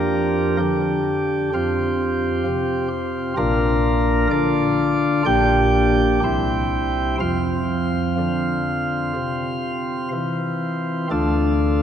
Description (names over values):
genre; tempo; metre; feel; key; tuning
classical, chorale-style piece for pipe organ; 60-66 BPM; 4/4; rubato; unclear; A4 = 440 Hz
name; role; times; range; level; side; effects
chamber organ, sparkling flutes; solo; 0.0-11.8 s; Bb1 to G5; -18 LUFS; equal; none
room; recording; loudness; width
wet church reverb, RT60 3.3 s; none; -18 LUFS; side -9 dB against mid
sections
0.0-11.1 A section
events
none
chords
0.0 Gm/F; 1.5 F5; 3.4 Bb; 5.3 Gm/Bb; 6.2 C; 7.2 F5; 11.1 Dm